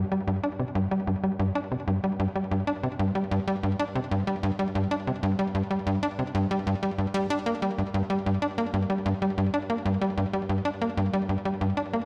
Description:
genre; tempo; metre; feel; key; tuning
ambient; 94 BPM; 4/4; straight; G minor; A4 = 440 Hz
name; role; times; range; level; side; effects
tight sequencer bass; solo; 0.0-12.0 s; G2 to D4; -28 LUFS; equal; delay
room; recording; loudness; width
wet concert hall reverb, RT60 2.2 s; none; -28 LUFS; mono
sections
0.0-12.1 A section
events
none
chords
none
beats
| 0.28 0.92 1.56 2.20 | 2.83 3.47 4.11 4.75 | 5.39 6.03 6.66 7.30 | 7.94 8.58 9.22 9.86 | 10.49 11.13 11.77

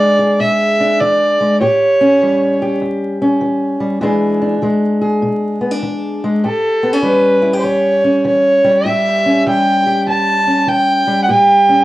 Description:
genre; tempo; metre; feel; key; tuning
acoustic country blues, solo or duo; 99 BPM; 4/4; swing 65% on 8ths; unclear; A4 = 444 Hz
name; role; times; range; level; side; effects
dark fiddle; melody; 0.0-2.8, 6.4-11.8 s; A4 to A5; -12 LUFS; right 1 dB; none
fingerpicked steel-string acoustic guitar; accompaniment; 0.0-11.8 s; E2 to G#4; -16 LUFS; left 1 dB; none
room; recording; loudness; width
moderate small room reverb, RT60 0.5 s; worn, warbling old tape, cassette tape, vinyl crackle, warbly pitch drift; -12 LUFS; side -17 dB against mid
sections
0.0-11.8 A section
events
none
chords
0.0 E7; 1.6 A7; 4.0 E7; 6.4 A7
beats
0.39 0.99 | 1.60 2.20 2.80 3.41 | 4.01 4.62 5.22 5.83 | 6.43 7.04 7.64 8.25 | 8.86 9.47 10.07 10.68 | 11.29

